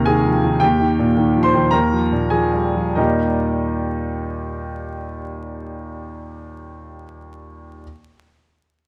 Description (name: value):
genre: classical, virtuoso piano study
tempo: 90-112 BPM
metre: 2/4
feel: rubato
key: Eb major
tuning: A4 = 442 Hz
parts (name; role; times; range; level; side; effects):
- clear grand piano; solo; 0.0-7.8 s; Eb2 to C6; -20 LUFS; equal; none
room: moderate recital hall reverb, RT60 1.5 s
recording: close, detailed microphones, vinyl crackle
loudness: -19 LUFS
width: mono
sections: 0.0-3.0 A section; 3.0-5.6 B section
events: slowing down 0.1-3.0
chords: 0.0 Ab/Eb; 0.6 Eb; 1.7 Bb5/Eb; 3.0 Eb